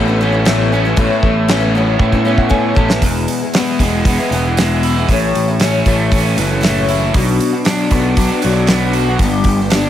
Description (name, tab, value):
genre	folk rock and heartland rock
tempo	117 BPM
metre	4/4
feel	straight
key	A major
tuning	A4 = 443 Hz
part	clear grand piano	accompaniment	0.0-3.0 s	A4 to A5	-26 LUFS	right 3 dB	none
part	picked twelve-string acoustic guitar	accompaniment	0.0-9.9 s	E2 to G4	-18 LUFS	left 5 dB	none
part	crunchy overdriven guitar	riff	0.0-9.9 s	E2 to F#4	-17 LUFS	right 2 dB	none
part	picked electric bass	bass	0.0-9.9 s	E1 to A2	-18 LUFS	equal	none
part	damped 70s drum kit	drums	0.5-9.8 s	crash cymbal, hi-hat, kick drum, snare drum	-17 LUFS	equal	none
room	light reverb, studio reverb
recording	none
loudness	-12 LUFS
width	side -11 dB against mid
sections	0.0-3.0 A section; 3.0-9.9 B section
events	drum fill 2.0-3.0; grand piano fill 2.0-3.0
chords	0.0 Aadd9; 3.0 E; 5.1 A; 7.1 Bm; 9.2 G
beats	0.45 | 0.96 1.48 1.99 2.51 | 3.02 3.54 4.05 4.56 | 5.08 5.59 6.11 6.62 | 7.14 7.65 8.16 8.68 | 9.19 9.70